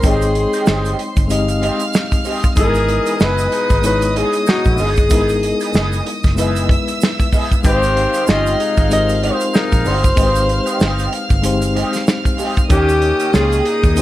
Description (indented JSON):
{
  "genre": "lush 1970s-style soul",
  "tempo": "95 BPM",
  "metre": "4/4",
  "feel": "swing 58% on 16ths",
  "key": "Ab major",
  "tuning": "A4 = 441 Hz",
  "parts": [
    { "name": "breathy alto saxophone", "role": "melody", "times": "0.0-14.0 s", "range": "Gb4 to Eb5", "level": "-18 LUFS", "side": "left 1 dB", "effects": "none" },
    { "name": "warm studio violin section", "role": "second line", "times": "0.0-14.0 s", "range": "C5 to F6", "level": "-25 LUFS", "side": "right 1 dB", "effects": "none" },
    { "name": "mellow reed electric piano", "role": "accompaniment", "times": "0.0-14.0 s", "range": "G3 to G5", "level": "-22 LUFS", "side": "left 3 dB", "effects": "fast tremolo" },
    { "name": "electric guitar through a small old amp", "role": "riff", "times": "0.0-13.9 s", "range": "Bb3 to G#4", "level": "-26 LUFS", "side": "right 3 dB", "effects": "wah" },
    { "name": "vintage muted fingered electric bass", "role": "bass", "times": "0.0-14.0 s", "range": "Gb1 to Eb2", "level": "-19 LUFS", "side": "equal", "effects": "none" },
    { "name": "warm soul drum kit", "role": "drums", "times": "0.0-14.0 s", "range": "hi-hat, kick drum, snare drum", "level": "-17 LUFS", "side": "equal", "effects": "none" },
    { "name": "tube shaker", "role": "percussion", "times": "0.0-14.0 s", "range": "none", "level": "-34 LUFS", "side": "right 8 dB", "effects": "none" },
    { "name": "warm horn section", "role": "stabs", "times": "2.6-14.0 s", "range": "Bb2 to G#4", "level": "-23 LUFS", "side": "left 4 dB", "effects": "none" },
    { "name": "vibraphone with medium hard mallets", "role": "texture", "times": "8.0-14.0 s", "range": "Ab3 to F4", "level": "-28 LUFS", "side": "right 2 dB", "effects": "none" }
  ],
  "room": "small room ambience",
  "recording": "none",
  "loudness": "-13 LUFS",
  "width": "side -14 dB against mid",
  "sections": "0.0-14.0 A section",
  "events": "none",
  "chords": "0.0 Abmaj7; 2.6 Emaj7; 7.6 Abmaj7; 12.7 Eb7"
}